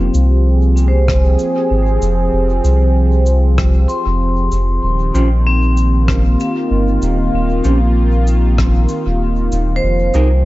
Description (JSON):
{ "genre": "ambient dub", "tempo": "96 BPM", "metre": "4/4", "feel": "straight", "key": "F minor", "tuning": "A4 = 440 Hz", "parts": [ { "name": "warm analog pad", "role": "sustained chords", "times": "0.0-10.4 s", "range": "Eb3 to Ab4", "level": "-19 LUFS", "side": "equal", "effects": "chorus" }, { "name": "vibraphone with hard mallets", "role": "arpeggios", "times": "0.0-10.4 s", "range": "C4 to C6", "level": "-21 LUFS", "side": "equal", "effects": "low-pass filter, dub echo" }, { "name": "soft dub sub bass", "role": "bass", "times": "0.0-10.4 s", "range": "Eb1 to C2", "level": "-13 LUFS", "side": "equal", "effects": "none" }, { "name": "cabasa and rim click", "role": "drums", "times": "0.1-10.3 s", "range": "none", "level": "-27 LUFS", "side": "left 1 dB", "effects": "dub echo" }, { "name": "electronic kick drum", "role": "drums", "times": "1.1-8.7 s", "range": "none", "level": "-20 LUFS", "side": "equal", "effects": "none" }, { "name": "mellow electric guitar", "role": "stabs", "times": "5.1-10.3 s", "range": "Db4 to C5", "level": "-26 LUFS", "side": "right 1 dB", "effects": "harmonic tremolo, low-pass filter, dub echo" } ], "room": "light reverb, small room ambience", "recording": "dark, warm production, nothing above 7.7 kHz", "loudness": "-12 LUFS", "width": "side -17 dB against mid", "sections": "0.0-10.4 A section", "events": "filter sweep on vibraphone 0.0-10.4", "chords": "0.0 Fmadd9; 4.8 Eb69; 9.8 Fm11" }